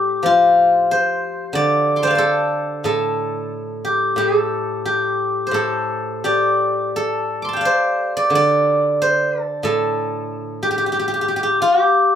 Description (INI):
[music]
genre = chinese traditional, Chinese solo plucked strings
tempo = 89 BPM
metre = 4/4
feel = uneven beats, rubato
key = unclear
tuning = A4 = 440 Hz
[part]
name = steel-string zither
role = solo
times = 0.0-12.2 s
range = A2 to D6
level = -16 LUFS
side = equal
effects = none
[sound]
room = wet studio ambience, RT60 0.5 s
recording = band playing live in one room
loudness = -16 LUFS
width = side -9 dB against mid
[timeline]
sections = 0.0-6.9 A section; 6.9-12.2 B section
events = none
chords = none